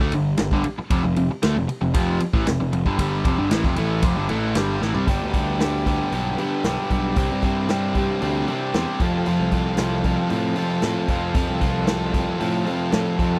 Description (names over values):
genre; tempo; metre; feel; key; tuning
classic rock; 115 BPM; 4/4; straight; unclear; A4 = 440 Hz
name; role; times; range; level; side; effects
biting overdriven guitar; riff; 0.0-13.4 s; F2 to A4; -27 LUFS; equal; none
overdriven semi-hollow guitar; riff; 0.0-13.4 s; F2 to C4; -28 LUFS; equal; none
fuzz picked electric bass; bass; 0.0-13.4 s; F1 to A2; -28 LUFS; equal; overdrive
vintage drum kit; drums; 0.1-13.3 s; hi-hat, kick drum, ride cymbal, snare drum, toms; -26 LUFS; equal; none
room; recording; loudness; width
studio ambience; dry, close 1970s-style studio recording; -22 LUFS; mono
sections
0.0-5.1 A section; 5.1-13.4 B section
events
drum fill 4.8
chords
0.0 G5; 0.9 F5; 5.1 G; 7.2 Csus2; 9.0 F